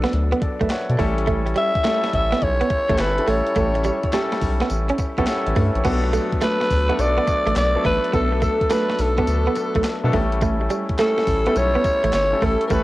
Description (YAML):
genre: R&B, new jack swing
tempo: 105 BPM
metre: 4/4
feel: swing 67% on 16ths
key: B minor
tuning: A4 = 440 Hz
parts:
  - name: clear concert grand piano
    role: accompaniment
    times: 0.0-12.8 s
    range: F#3 to F#5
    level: -24 LUFS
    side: left 2 dB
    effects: cassette tape
  - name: direct-recorded clean electric guitar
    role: riff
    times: 0.0-12.8 s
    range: G3 to C#4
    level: -25 LUFS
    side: right 4 dB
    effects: wide subtle chorus, cassette tape
  - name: round analog bass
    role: bass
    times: 0.0-12.8 s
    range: G1 to B2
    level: -22 LUFS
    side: equal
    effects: none
  - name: crisp 8-bit digital drum machine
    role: drums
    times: 0.0-12.8 s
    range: crash cymbal, handclaps, hi-hat, kick drum, snare drum, tambourine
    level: -26 LUFS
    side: equal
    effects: cassette tape
  - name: raspy alto saxophone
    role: melody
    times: 1.6-12.8 s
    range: A4 to E5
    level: -21 LUFS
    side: equal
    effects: cassette tape
room: light reverb, digital ambience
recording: home recording on cassette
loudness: -18 LUFS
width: side -17 dB against mid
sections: 0.0-5.8 A section; 5.8-12.8 B section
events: none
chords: 0.0 Bm7; 1.0 A7; 5.8 Bm7; 10.1 A7